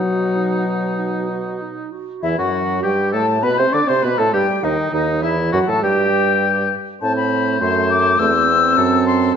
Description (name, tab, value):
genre	quick classical-period movement for wind quintet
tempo	101 BPM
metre	4/4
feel	uneven beats, rubato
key	E minor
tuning	A4 = 440 Hz
part	silver concert flute	melody	0.0-9.3 s	D#5 to E6	-21 LUFS	left 6 dB	none
part	warm oboe	second line	0.0-9.3 s	D#4 to D5	-22 LUFS	left 4 dB	none
part	dark clarinet	accompaniment	0.0-9.3 s	A3 to D5	-24 LUFS	right 10 dB	none
part	mellow French horn	accompaniment	0.0-9.4 s	D#3 to D4	-22 LUFS	equal	none
part	mellow bassoon	bass	0.0-9.3 s	D#2 to D3	-22 LUFS	right 3 dB	none
room	moderate scoring stage reverb, RT60 1.6 s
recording	nothing above 7.6 kHz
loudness	-15 LUFS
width	side -7 dB against mid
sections	0.0-2.2 A section; 2.2-9.4 B section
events	none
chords	0.0 B; 2.2 Em; 4.6 D#dim; 5.8 N.C.; 7.0 Am